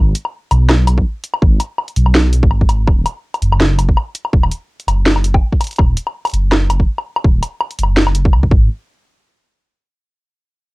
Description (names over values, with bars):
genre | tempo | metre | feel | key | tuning
half-time drum and bass | 165 BPM | 4/4 | swing 55% on 16ths, half-time | unclear | A4 = 440 Hz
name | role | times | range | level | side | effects
dark detuned saw bass | bass | 0.0-8.7 s | D#1 to C#2 | -14 LUFS | equal | none
drum and bass drum kit | drums | 0.1-8.4 s | hi-hat, snare drum, woodblock | -16 LUFS | left 1 dB | overdrive, cassette tape
electronic kick drum | drums | 1.0-8.6 s | none | -13 LUFS | equal | overdrive, cassette tape
room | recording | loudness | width
little or no reverb | home recording on cassette | -12 LUFS | side -22 dB against mid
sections
0.0-8.7 A section; 8.7-10.1 B section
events
none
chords
none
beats
0.33 0.69 1.06 | 1.42 1.78 2.15 2.51 | 2.88 3.24 3.60 3.97 | 4.33 4.69 5.06 5.42 | 5.78 6.15 6.51 6.88 | 7.24 7.60 7.97 8.33